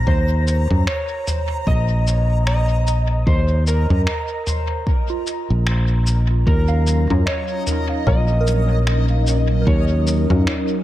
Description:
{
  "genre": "ambient dub",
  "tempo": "75 BPM",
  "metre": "4/4",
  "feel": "swing 58% on 16ths",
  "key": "Eb dorian",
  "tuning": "A4 = 440 Hz",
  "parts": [
    { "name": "soft synth bell", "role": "arpeggios", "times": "0.0-10.8 s", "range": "F4 to F5", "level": "-31 LUFS", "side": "right 5 dB", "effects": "chorus, phaser, dub echo" },
    { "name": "fingered electric bass", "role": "bass", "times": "0.0-10.4 s", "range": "Bb1 to Gb2", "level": "-17 LUFS", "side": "equal", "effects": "none" },
    { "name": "backwards swelling texture", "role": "texture", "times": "0.0-10.8 s", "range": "Eb5 to Bb5", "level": "-31 LUFS", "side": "left 2 dB", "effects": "built-in reverb" },
    { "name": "electric slide guitar", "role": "melody", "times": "0.1-10.8 s", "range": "Bb4 to Eb5", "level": "-26 LUFS", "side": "equal", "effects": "dub echo" },
    { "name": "electronic kick drum", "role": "drums", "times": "0.1-9.9 s", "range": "none", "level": "-19 LUFS", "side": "equal", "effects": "none" },
    { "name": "lo-fi sampler-style drum kit", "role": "drums", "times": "0.5-10.7 s", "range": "finger snaps, shaker, toms", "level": "-25 LUFS", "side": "equal", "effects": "dub echo" },
    { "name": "warm analog pad", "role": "sustained chords", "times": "6.5-10.8 s", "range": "Gb3 to Bb4", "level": "-25 LUFS", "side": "equal", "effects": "chorus" },
    { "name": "filtered dub chord stab", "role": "stabs", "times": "7.1-10.5 s", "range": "Db4 to Bb4", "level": "-29 LUFS", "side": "left 4 dB", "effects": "ensemble chorus, dub echo" }
  ],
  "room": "light reverb",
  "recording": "none",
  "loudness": "-16 LUFS",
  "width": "side -14 dB against mid",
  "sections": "0.0-6.5 A section; 6.5-10.8 B section",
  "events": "band accent 5.7-6.1",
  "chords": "0.0 Eb5; 6.5 Ebm7"
}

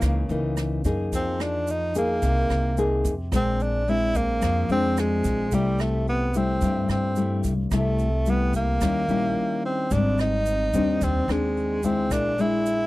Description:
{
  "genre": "bossa nova",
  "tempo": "109 BPM",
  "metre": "4/4",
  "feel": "straight",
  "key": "unclear",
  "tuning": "A4 = 440 Hz",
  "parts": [
    { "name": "breathy tenor saxophone", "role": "melody", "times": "0.0-12.9 s", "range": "G3 to E4", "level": "-26 LUFS", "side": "right 1 dB", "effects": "none" },
    { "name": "nylon-string guitar", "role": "accompaniment", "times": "0.0-12.9 s", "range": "G2 to G#4", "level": "-26 LUFS", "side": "left 2 dB", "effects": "none" },
    { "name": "upright bass", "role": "bass", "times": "0.0-12.9 s", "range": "Ab1 to G2", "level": "-27 LUFS", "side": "equal", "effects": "none" },
    { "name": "jazz brush drum kit", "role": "drums", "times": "0.0-12.8 s", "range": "hi-hat, kick drum, rim click", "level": "-32 LUFS", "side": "equal", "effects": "none" },
    { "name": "egg shaker", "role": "percussion", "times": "0.0-12.9 s", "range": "none", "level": "-42 LUFS", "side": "right 9 dB", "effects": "none" }
  ],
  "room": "little or no reverb",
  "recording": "dry, close 1970s-style studio recording",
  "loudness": "-21 LUFS",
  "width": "side -18 dB against mid",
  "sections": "0.0-9.9 A section; 9.9-12.9 B section",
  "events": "break 9.4-9.9",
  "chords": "0.0 F#13; 1.1 Fm7; 3.3 Bb9; 5.5 C6; 8.8 Eb7b9; 9.9 Abmaj7#11; 12.1 Bb7#11"
}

